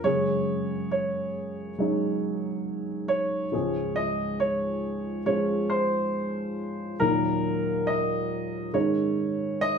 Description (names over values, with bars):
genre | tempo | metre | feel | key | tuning
pop | 69 BPM | 4/4 | straight | Db major | A4 = 437 Hz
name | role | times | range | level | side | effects
warm grand piano | melody | 0.0-9.8 s | Bb4 to Eb5 | -28 LUFS | right 1 dB | none
dark upright piano | accompaniment | 0.0-9.8 s | Db2 to Db5 | -27 LUFS | equal | none
room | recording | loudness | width
wet studio reverb, RT60 0.5 s | band playing live in one room | -25 LUFS | side -6 dB against mid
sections
0.0-9.8 A section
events
none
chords
0.1 Gbsus2; 3.5 Db; 7.0 Ebm; 8.8 Absus4